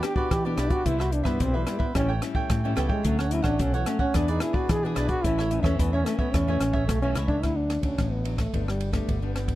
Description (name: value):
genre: samba and choro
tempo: 110 BPM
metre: 4/4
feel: straight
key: D major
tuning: A4 = 440 Hz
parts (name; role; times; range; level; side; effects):
- mellow trombone; melody; 0.0-9.6 s; E3 to G#4; -28 LUFS; equal; none
- cavaquinho; accompaniment; 0.0-7.4 s; D4 to G5; -33 LUFS; right 5 dB; none
- nylon-string guitar; accompaniment; 0.0-9.6 s; G2 to G#4; -32 LUFS; left 6 dB; none
- compact cocktail drum kit; drums; 0.0-9.6 s; hi-hat, kick drum, ride cymbal, rim click; -28 LUFS; equal; none
- fingered electric bass with an envelope filter; bass; 0.3-9.6 s; G1 to E3; -27 LUFS; equal; none
room: little or no reverb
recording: close, detailed microphones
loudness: -23 LUFS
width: side -15 dB against mid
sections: 0.0-7.4 A section; 7.4-9.6 B section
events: trombone solo 0.0-7.4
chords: 0.0 Em7; 0.9 Cmaj7; 2.0 A7; 3.1 Dmaj7; 4.1 E7; 5.2 A; 7.4 D; 8.5 G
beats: 0.32 | 0.86 1.41 1.96 2.51 | 3.05 3.60 4.15 4.70 | 5.25 5.79 6.34 6.89 | 7.44 7.99 8.54 9.09